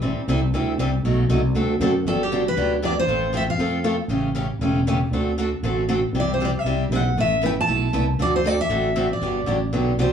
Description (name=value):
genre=acoustic string swing (jazz manouche)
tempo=235 BPM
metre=4/4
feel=swing 55% on 8ths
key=G major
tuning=A4 = 437 Hz
part: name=picked steel-string acoustic guitar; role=accompaniment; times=0.0-10.1 s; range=B2 to B4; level=-23 LUFS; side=equal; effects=none
part: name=sustaining fretless electric bass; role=bass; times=0.0-10.1 s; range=E1 to F#2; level=-23 LUFS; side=right 1 dB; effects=none
part: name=picked steel-string acoustic guitar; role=melody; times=2.1-4.0, 6.2-10.1 s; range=G4 to A5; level=-23 LUFS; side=equal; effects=none
room=wet small room reverb, RT60 0.6 s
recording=band playing live in one room, small room reverb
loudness=-19 LUFS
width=side -8 dB against mid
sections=0.0-2.1 A section; 2.1-10.1 B section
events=none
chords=0.0 Am7; 1.0 B7b9; 1.6 D7; 2.1 Gmaj7; 3.1 F/A; 4.1 A7; 5.1 D7; 6.1 C; 7.2 Asus2; 8.2 D7; 9.2 Gmaj7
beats=| 0.03 0.28 0.54 0.79 | 1.04 1.30 1.55 1.81 | 2.06 2.32 2.57 2.83 | 3.08 3.34 3.59 3.85 | 4.10 4.36 4.61 4.87 | 5.12 5.38 5.63 5.89 | 6.14 6.40 6.66 6.91 | 7.17 7.42 7.68 7.94 | 8.19 8.45 8.71 8.96 | 9.22 9.47 9.73 9.99